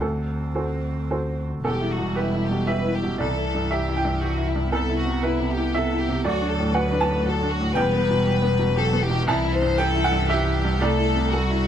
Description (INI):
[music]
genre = neoclassical piano and strings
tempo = 117 BPM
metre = 3/4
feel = rubato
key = E minor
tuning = A4 = 440 Hz
[part]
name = warm cello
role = second line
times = 0.0-11.7 s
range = E3 to C4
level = -29 LUFS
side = right 4 dB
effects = none
[part]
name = bright upright piano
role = accompaniment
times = 0.0-11.7 s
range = C2 to A5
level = -25 LUFS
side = right 1 dB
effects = none
[part]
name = rich double bass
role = bass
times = 0.0-11.7 s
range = E1 to D2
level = -26 LUFS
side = equal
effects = none
[part]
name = rich chamber violin section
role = melody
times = 1.7-11.7 s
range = E4 to C5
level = -26 LUFS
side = left 4 dB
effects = none
[sound]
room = light reverb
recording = none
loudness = -20 LUFS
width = side -9 dB against mid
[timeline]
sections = 0.0-1.6 A section; 1.6-11.7 A section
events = none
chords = 0.0 D7; 1.6 Em; 3.2 C; 4.7 Amadd9/C; 6.2 D; 7.7 Em; 9.3 C; 10.8 Am/C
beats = | 0.02 0.57 1.11 | 1.65 2.17 2.68 | 3.20 3.71 4.22 | 4.73 5.23 5.74 | 6.24 6.74 7.25 | 7.75 8.25 8.77 | 9.28 9.79 10.30 | 10.81 11.32